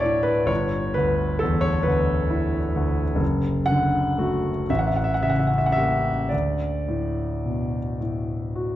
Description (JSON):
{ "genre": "classical, romantic nocturne for solo piano", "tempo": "35-46 BPM (dotted quarters)", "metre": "6/8", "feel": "rubato", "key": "D major", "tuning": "A4 = 439 Hz", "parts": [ { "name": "clear grand piano", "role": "solo", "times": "0.0-8.8 s", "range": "F#1 to F#5", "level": "-21 LUFS", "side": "equal", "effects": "none" } ], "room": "wet recital hall reverb, RT60 1.7 s", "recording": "dark, warm production", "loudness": "-21 LUFS", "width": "side -13 dB against mid", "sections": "0.0-8.8 A section", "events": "none", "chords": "0.5 G6; 3.2 D/F#; 4.7 A7b9; 6.3 D5", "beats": "| 0.49 1.86 | 3.21 4.69 | 6.32 8.00" }